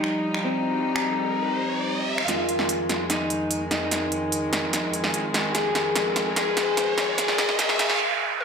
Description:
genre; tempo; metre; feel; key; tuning
heavy wobble dubstep; 147 BPM; 4/4; half-time; F minor; A4 = 440 Hz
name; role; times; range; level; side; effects
electric guitar at the edge of break-up; melody; 0.0-8.0 s; C4 to Ab4; -27 LUFS; left 2 dB; none
warm chamber string section; sustained chords; 0.0-8.4 s; F2 to Eb4; -28 LUFS; left 1 dB; low-pass filter
big-room dance drum kit; drums; 0.0-8.4 s; finger snaps, hi-hat, snare drum, toms; -25 LUFS; right 2 dB; overdrive, high-pass filter on snare, high-pass filter on hats, high-pass filter on toms, high-pass filter on room
riser and noise sweep; sound effects; 0.5-8.4 s; none; -30 LUFS; right 2 dB; none
room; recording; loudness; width
wet digital room reverb, RT60 0.9 s; high-pass filter; -22 LUFS; side -6 dB against mid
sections
0.0-2.3 A section; 2.3-8.4 B section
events
riser 0.5-2.3, 2.3-8.0; build-up 2.3-8.4; drum fill 2.3-8.0; filter sweep on string section 2.3-8.4; noise sweep 7.2-8.4; break 8.0-8.4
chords
0.0 Ebadd9; 2.3 Fm7

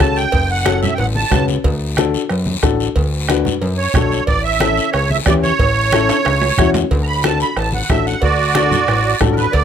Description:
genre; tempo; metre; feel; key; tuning
latin, cumbia; 182 BPM; 4/4; straight; D major; A4 = 439 Hz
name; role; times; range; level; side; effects
musette accordion; melody; 0.0-1.5, 3.8-9.6 s; F#4 to B5; -18 LUFS; right 6 dB; none
dark upright piano; accompaniment; 0.0-9.4 s; C#4 to B4; -20 LUFS; left 7 dB; none
fat analog bass; bass; 0.0-9.6 s; F#1 to F#2; -19 LUFS; left 1 dB; none
bombo; percussion; 0.0-9.6 s; none; -19 LUFS; right 1 dB; none
congas; percussion; 0.0-9.6 s; none; -24 LUFS; right 1 dB; none
guiro; percussion; 0.0-9.6 s; none; -28 LUFS; left 8 dB; none
cowbell and timbales; percussion; 0.3-9.6 s; none; -26 LUFS; right 5 dB; none
room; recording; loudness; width
little or no reverb; close, detailed microphones; -13 LUFS; side -8 dB against mid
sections
0.0-6.9 A section; 6.9-9.6 B section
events
drum fill 6.1-6.9; accordion solo 6.9-9.6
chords
0.0 F#m; 1.6 D; 4.3 A; 6.9 D

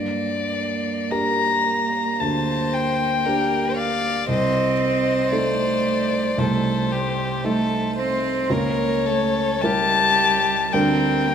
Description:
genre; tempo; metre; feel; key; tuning
classical, slow romantic movement for piano quartet; 45-58 BPM; 4/4; rubato; G minor; A4 = 440 Hz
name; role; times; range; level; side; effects
dark violin; melody; 0.0-11.3 s; C5 to Bb5; -22 LUFS; left 5 dB; none
warm cello; second line; 0.0-11.3 s; G3 to C4; -26 LUFS; right 8 dB; none
warm grand piano; accompaniment; 0.0-11.3 s; C2 to Bb4; -25 LUFS; right 1 dB; none
rich violin; second line; 2.2-11.3 s; G4 to D5; -26 LUFS; left 1 dB; none
room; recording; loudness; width
wet recital hall reverb, RT60 1.7 s; none; -19 LUFS; side -8 dB against mid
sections
0.0-11.3 A section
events
none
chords
0.0 Gm; 4.3 Adim/C; 8.5 C#dim7; 10.7 Gm/D

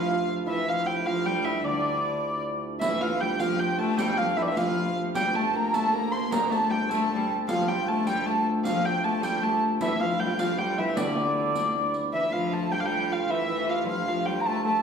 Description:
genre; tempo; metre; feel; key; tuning
medieval dance; 103 BPM (dotted quarters); 6/8; straight; D minor; A4 = 439 Hz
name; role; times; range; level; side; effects
dark hurdy-gurdy; melody; 0.0-14.8 s; D5 to C6; -26 LUFS; right 1 dB; none
hammered dulcimer; second line; 0.0-14.8 s; D4 to C5; -31 LUFS; right 4 dB; none
rich viola da gamba; second line; 0.0-14.8 s; D3 to Bb3; -30 LUFS; left 5 dB; none
hand-pumped harmonium; drone; 0.0-14.8 s; D2; -35 LUFS; left 1 dB; none
riq; percussion; 2.8-12.0 s; none; -35 LUFS; right 2 dB; none
room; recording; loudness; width
wet recital hall reverb, RT60 1.4 s; recorded in a church or concert hall; -24 LUFS; side -6 dB against mid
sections
0.0-2.8 A section; 2.8-12.1 A section; 12.1-14.8 B section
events
none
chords
none

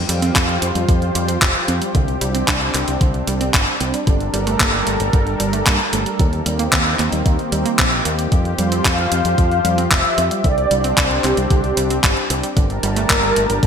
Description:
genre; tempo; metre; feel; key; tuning
italo disco; 113 BPM; 4/4; straight; F major; A4 = 440 Hz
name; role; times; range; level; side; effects
lush unison pad; sustained chords; 0.0-13.7 s; Eb3 to A5; -23 LUFS; equal; chorus
fingered electric bass with an envelope filter; bass; 0.0-13.7 s; F1 to G2; -22 LUFS; equal; none
analog pluck; arpeggios; 0.1-13.7 s; D3 to F4; -25 LUFS; right 4 dB; chorus, digital delay
clean 12-bit digital drum machine; drums; 0.1-13.7 s; handclaps, hi-hat; -20 LUFS; equal; gated reverb
electronic kick drum; drums; 0.4-13.7 s; none; -18 LUFS; equal; none
mellow synth brass; melody; 8.9-13.7 s; G4 to F5; -20 LUFS; equal; chorus, ping-pong delay
room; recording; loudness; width
moderate lush hall reverb, RT60 1.5 s; bright 1980s-style digital production; -15 LUFS; side -7 dB against mid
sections
0.0-13.7 A section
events
none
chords
0.0 Fsus2; 1.9 Csus2; 4.1 Gmadd9; 6.2 Eb6; 8.3 Fsus2; 10.4 Csus2; 12.6 Gmadd9

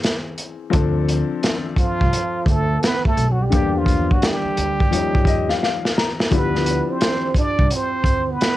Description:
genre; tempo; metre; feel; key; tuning
hip hop, jazz-hop; 86 BPM; 4/4; swing 64% on 16ths; D dorian; A4 = 440 Hz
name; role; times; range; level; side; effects
trumpet with plunger mute; melody; 0.0-8.6 s; F4 to D5; -24 LUFS; equal; cassette tape
warm trombone; second line; 0.0-8.6 s; F3 to D4; -26 LUFS; right 7 dB; cassette tape
clear upright piano; accompaniment; 0.0-8.6 s; D3 to Bb5; -25 LUFS; left 7 dB; cassette tape
crunchy breakbeat drum kit; drums; 0.0-8.6 s; hi-hat, kick drum, snare drum; -20 LUFS; equal; none
upright bass; bass; 0.7-8.3 s; B1 to E2; -23 LUFS; equal; none
room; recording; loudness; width
light reverb; home recording on cassette; -17 LUFS; side -14 dB against mid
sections
0.0-8.6 A section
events
upright piano fill 4.9-6.3; drum fill 5.6-6.3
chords
0.0 Caug7; 0.7 Dm7; 3.5 Em7b5; 4.9 Eb9; 6.3 Dm11

